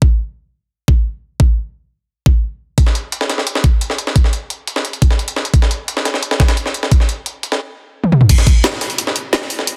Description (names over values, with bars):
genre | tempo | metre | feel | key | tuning
drum and bass | 174 BPM | 4/4 | straight | none | none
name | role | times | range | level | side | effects
electronic kick drum | drums | 0.0-8.5 s | none | -14 LUFS | equal | overdrive, small room reverb
breakbeat sampler-style drum kit | drums | 2.8-9.8 s | hi-hat, snare drum | -22 LUFS | equal | high-pass filter on snare, small room reverb, high-pass filter on hats
drum and bass drum kit | drums | 8.0-9.7 s | crash cymbal, hi-hat, snare drum, toms | -17 LUFS | equal | overdrive, low-pass filter on hats, small room reverb, low-pass filter on snare, low-pass filter on toms, low-pass filter on cymbals
room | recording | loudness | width
little or no reverb | dense, heavily limited modern master | -16 LUFS | mono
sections
0.0-8.3 A section; 8.3-9.8 B section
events
drum fill 8.0; drop 8.3-9.8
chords
none